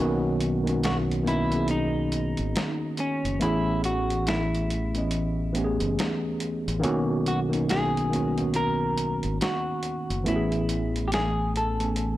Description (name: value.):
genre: lo-fi hip hop.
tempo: 70 BPM.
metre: 4/4.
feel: swing 61% on 16ths.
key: B major.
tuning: A4 = 440 Hz.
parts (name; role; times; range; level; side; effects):
mellow tine electric piano; accompaniment; 0.0-12.2 s; D#3 to G#5; -27 LUFS; equal; medium stereo tremolo, cassette tape, low-pass filter.
fingered electric bass; bass; 0.0-12.2 s; F#1 to B1; -29 LUFS; equal; transformer saturation.
boom bap sampler-style drum kit; drums; 0.4-12.2 s; hi-hat, snare drum; -33 LUFS; equal; none.
semi-hollow electric guitar; melody; 0.8-12.2 s; C#4 to A#4; -29 LUFS; equal; low-pass filter.
room: light reverb, digital ambience.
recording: dry, gritty hardware recording.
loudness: -24 LUFS.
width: side -15 dB against mid.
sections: 0.0-12.2 A section.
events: break 0.0-12.2.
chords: 0.0 Bmaj9; 3.4 Amaj9; 6.8 Bmaj9; 10.3 Amaj9.